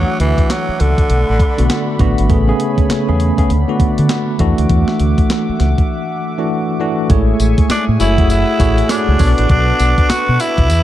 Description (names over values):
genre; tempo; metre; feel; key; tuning
R&B, new jack swing; 100 BPM; 4/4; swing 61% on 16ths; A major; A4 = 440 Hz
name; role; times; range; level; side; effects
raspy tenor saxophone; melody; 0.0-2.0, 7.7-10.8 s; D3 to F#4; -18 LUFS; right 1 dB; digital delay
bell-like tine electric piano; accompaniment; 0.0-10.7 s; C#3 to D5; -18 LUFS; equal; medium stereo tremolo
warm analog pad; sustained chords; 0.0-10.8 s; A3 to E6; -24 LUFS; equal; chorus
deep dub fingered electric bass; bass; 0.0-10.8 s; F#1 to D3; -14 LUFS; equal; none
clean 12-bit digital drum machine; drums; 0.2-10.8 s; handclaps, hi-hat, kick drum, snare drum, tambourine; -16 LUFS; equal; none
room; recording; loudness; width
light reverb, digital ambience; dark, warm production; -12 LUFS; side -13 dB against mid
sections
0.0-7.1 A section; 7.1-10.8 B section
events
break 5.9-7.1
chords
0.0 E9sus4; 1.1 Bm7; 2.3 Amaj9; 3.5 D6; 4.4 E9sus4; 7.1 Amaj7; 8.0 F#m9; 9.2 Bm7